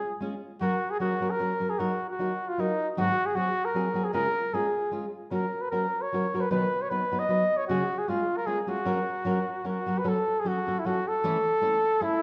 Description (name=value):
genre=mexican folk, mariachi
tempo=152 BPM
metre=3/4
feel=swing 53% on 8ths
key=F# major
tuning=A4 = 440 Hz
part: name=mellow trumpet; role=melody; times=0.0-12.2 s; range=D#4 to D#5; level=-30 LUFS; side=equal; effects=none
part: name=nylon-string guitar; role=accompaniment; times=0.2-12.1 s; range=G#2 to B4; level=-32 LUFS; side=equal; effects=none
room=wet recital hall reverb, RT60 1.4 s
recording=none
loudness=-28 LUFS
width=mono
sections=0.0-10.1 A section; 10.1-12.2 B section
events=none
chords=0.0 C#; 0.6 F#; 1.8 D#m/F#; 3.0 G#7; 4.1 C#; 5.3 F#; 6.5 B; 7.7 C#sus4; 8.1 C#; 8.9 F#; 10.1 F#m; 11.2 A/E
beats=0.20 | 0.59 0.99 1.39 | 1.78 2.17 2.56 | 2.96 3.35 3.74 | 4.13 4.52 4.92 | 5.32 5.72 6.12 | 6.51 6.91 7.30 | 7.69 8.08 8.47 | 8.86 9.25 9.65 | 10.05 10.45 10.84 | 11.23 11.62 12.01